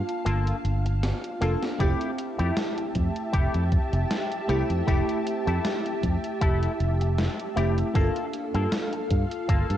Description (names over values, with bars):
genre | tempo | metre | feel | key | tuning
vaporwave | 78 BPM | 4/4 | swing 54% on 16ths | F major | A4 = 440 Hz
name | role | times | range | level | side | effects
FM electric piano with soft pad layer | accompaniment | 0.0-9.8 s | A3 to A5 | -31 LUFS | equal | phaser, ensemble chorus, analog delay
soft string machine | sustained chords | 0.0-9.8 s | G4 to A5 | -34 LUFS | equal | ensemble chorus
gated 80s digital drum machine | drums | 0.1-9.8 s | hi-hat, snare drum | -33 LUFS | equal | gated reverb, gated reverb snare, vintage 12-bit sampler grit
electric guitar with an envelope filter | riff | 0.3-9.8 s | A3 to A4 | -33 LUFS | left 3 dB | analog chorus, analog delay
fingered electric bass | bass | 0.3-9.8 s | F1 to G2 | -25 LUFS | equal | none
electronic kick drum | drums | 1.8-9.7 s | none | -25 LUFS | equal | vintage 12-bit sampler grit
room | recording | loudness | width
light reverb, digital ambience | worn, warbling old tape, cassette tape, warbly pitch drift | -23 LUFS | side -11 dB against mid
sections
0.0-9.8 A section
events
break 0.0-1.8; drum fill 1.0-1.8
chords
0.0 Gm9; 1.8 Fmaj9; 8.0 Gm9